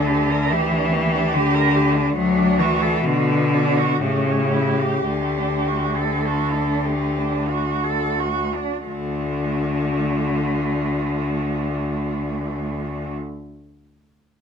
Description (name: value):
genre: classical, lyrical piece for cello ensemble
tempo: 42-74 BPM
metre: 3/4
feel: rubato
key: D major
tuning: A4 = 437 Hz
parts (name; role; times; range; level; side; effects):
- dark cello; melody; 0.0-13.1 s; F#4 to A4; -28 LUFS; left 5 dB; none
- warm cello; second line; 0.0-13.1 s; A3 to Bb4; -26 LUFS; right 7 dB; none
- rich cello; accompaniment; 0.0-13.1 s; C#3 to F#3; -21 LUFS; left 2 dB; none
- rich cello; bass; 0.0-13.1 s; D2 to B2; -27 LUFS; right 3 dB; none
room: light reverb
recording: close, detailed microphones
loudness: -19 LUFS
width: side -7 dB against mid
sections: 0.0-8.9 A section; 8.9-13.0 B section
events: slowing down 0.9-8.9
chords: 0.0 Gm/D; 2.2 D; 3.0 Bm7; 4.0 A7; 5.1 D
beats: 0.52 1.34 | 2.16 3.05 4.01 | 5.07 6.25 7.50 | 8.88 10.25 11.63